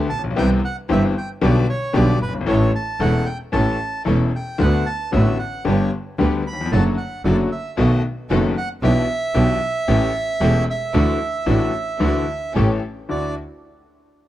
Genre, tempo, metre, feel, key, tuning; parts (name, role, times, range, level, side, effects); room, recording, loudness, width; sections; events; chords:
tango; 114 BPM; 4/4; rubato; D major; A4 = 439 Hz
bright grand piano; accompaniment; 0.0-13.3 s; E1 to A4; -22 LUFS; left 4 dB
clear symphonic string section; stabs; 0.0-13.3 s; B3 to B4; -30 LUFS; right 2 dB
bright double bass; bass; 0.0-13.3 s; E1 to D2; -20 LUFS; right 1 dB
bandoneon; melody; 0.1-13.4 s; B4 to B5; -25 LUFS; right 3 dB
small room ambience; dry, close 1970s-style studio recording; -17 LUFS; side -14 dB against mid
0.0-13.1 A section; 13.1-14.3 B section
0.4 Cmaj7; 1.4 G/B; 2.5 A; 4.6 D6; 5.7 G; 6.7 D/F#; 7.8 B7; 8.8 Em7/B; 9.9 A7; 10.9 Dadd9; 12.6 A7; 13.1 Dadd9